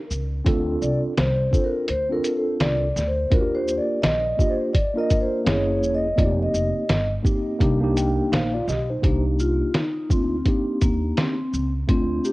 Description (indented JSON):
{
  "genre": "hip hop, jazz-hop",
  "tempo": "84 BPM",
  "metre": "4/4",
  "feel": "swing 60% on 16ths",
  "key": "C dorian",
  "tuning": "A4 = 439 Hz",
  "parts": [
    { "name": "mellow tine electric piano", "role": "accompaniment", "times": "0.0-12.3 s", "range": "A3 to G5", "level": "-25 LUFS", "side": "equal", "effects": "medium stereo tremolo, cassette tape" },
    { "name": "upright bass", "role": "bass", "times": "0.1-12.2 s", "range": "E1 to Eb2", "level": "-25 LUFS", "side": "equal", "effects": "none" },
    { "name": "lo-fi sampler-style drum kit", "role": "drums", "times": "0.1-12.3 s", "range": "hi-hat, kick drum, shaker, snare drum", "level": "-22 LUFS", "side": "equal", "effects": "cassette tape" },
    { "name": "vibraphone with soft mallets", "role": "melody", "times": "0.8-12.3 s", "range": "Bb3 to Eb5", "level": "-25 LUFS", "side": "left 1 dB", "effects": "cassette tape, tape echo" }
  ],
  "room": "little or no reverb",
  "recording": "home recording on cassette",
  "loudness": "-20 LUFS",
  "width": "side -20 dB against mid",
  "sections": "0.0-9.0 A section; 9.0-12.3 B section",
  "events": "vibraphone solo 0.0-9.0; tine electric piano fill 7.6-9.0",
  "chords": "0.5 Dm7; 3.3 Ebmaj7; 5.5 F#9; 6.2 F9sus4; 7.6 Cm9",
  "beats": "| 0.46 1.17 1.89 2.60 | 3.31 4.03 4.74 5.46 | 6.17 6.89 7.60 8.31 | 9.03 9.74 10.46 11.17 | 11.89"
}